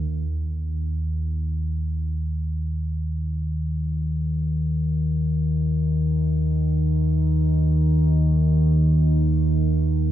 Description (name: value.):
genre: ambient.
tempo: free time.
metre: none.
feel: none.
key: unclear.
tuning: A4 = 440 Hz.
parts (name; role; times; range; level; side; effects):
deep rumbling drone; solo; 0.0-10.1 s; Eb2 to Eb3; -20 LUFS; equal; built-in reverb, tape echo.
room: light reverb.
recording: none.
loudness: -20 LUFS.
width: side -12 dB against mid.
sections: 0.1-10.1 A section.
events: none.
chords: none.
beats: free time.